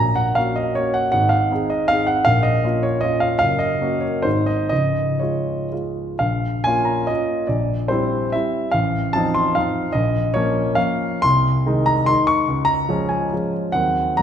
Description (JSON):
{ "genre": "classical, romantic triple-time dance for piano with dotted rhythms", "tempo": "115-172 BPM", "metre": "3/4", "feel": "rubato", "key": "Db major, Bb minor from 6.2 s", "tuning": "A4 = 440 Hz", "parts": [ { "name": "warm grand piano", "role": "solo", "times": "0.0-14.2 s", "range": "Db1 to Db6", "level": "-17 LUFS", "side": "equal", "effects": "none" } ], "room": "wet concert hall reverb, RT60 1.9 s", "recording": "minimal, uncompressed stereo recording", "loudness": "-17 LUFS", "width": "side -8 dB against mid", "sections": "0.0-6.2 A section; 6.2-14.2 B section", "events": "none", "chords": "0.0 Gb/Bb; 1.1 Ab; 2.3 Bbm; 3.4 Gb; 4.3 Ab; 4.7 Db; 6.2 Bbm; 7.5 C7/Bb; 8.7 F7/A; 9.9 Bbm; 11.2 Ab/C; 12.5 Db; 13.7 Cdim/Eb" }